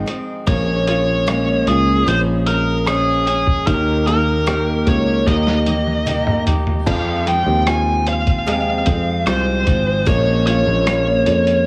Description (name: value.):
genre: pop ballad.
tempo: 75 BPM.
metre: 4/4.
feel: straight.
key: unclear.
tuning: A4 = 436 Hz.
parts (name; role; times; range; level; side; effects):
clear upright piano; accompaniment; 0.0-11.7 s; Eb3 to Ab4; -26 LUFS; equal; tape echo.
picked steel-string acoustic guitar; arpeggios; 0.0-11.7 s; F2 to Ab4; -27 LUFS; equal; tape echo.
sustaining fretless electric bass; bass; 0.0-11.7 s; Ab1 to F2; -22 LUFS; equal; none.
lo-fi sampler-style drum kit; drums; 0.1-11.7 s; crash cymbal, hi-hat, kick drum, rim click, snare drum, toms; -23 LUFS; equal; none.
biting lead guitar; melody; 0.5-11.7 s; Ab4 to Ab5; -22 LUFS; equal; overdrive, tape echo.
room: light reverb, digital ambience.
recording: echo-heavy mix.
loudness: -17 LUFS.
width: mono.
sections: 0.0-6.9 A section; 6.9-11.7 B section.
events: drum fill 5.3-6.9.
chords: 0.5 Bbm7; 3.7 Eb; 6.9 Fm; 10.1 Bbm7.